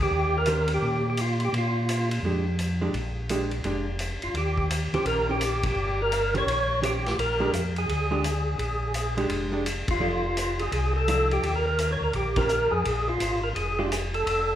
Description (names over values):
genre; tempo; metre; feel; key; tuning
soul jazz organ trio; 170 BPM; 4/4; swing 64% on 8ths; Bb mixolydian; A4 = 440 Hz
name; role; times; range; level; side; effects
percussive tonewheel organ; melody; 0.0-2.1, 4.2-14.6 s; F4 to Db5; -26 LUFS; equal; slow rotary speaker, overdrive, chorus vibrato
mellow tonewheel organ; bass; 0.0-14.6 s; E1 to Bb2; -28 LUFS; equal; slow rotary speaker
archtop guitar, miked and amplified; accompaniment; 0.5-13.9 s; Eb3 to D5; -30 LUFS; right 2 dB; none
vintage drum kit; drums; 0.5-14.4 s; hi-hat, kick drum, ride cymbal, snare drum; -32 LUFS; equal; none
room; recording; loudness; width
moderate recital hall reverb, RT60 1.4 s; recorded in a church or concert hall; -23 LUFS; side -11 dB against mid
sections
0.0-14.6 A section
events
band accent 5.6, 9.8, 12.3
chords
0.1 Eb6; 1.5 Bb6; 4.4 Eb6; 7.2 Bb6; 10.0 F6; 11.4 Ebadd9; 12.8 Bb5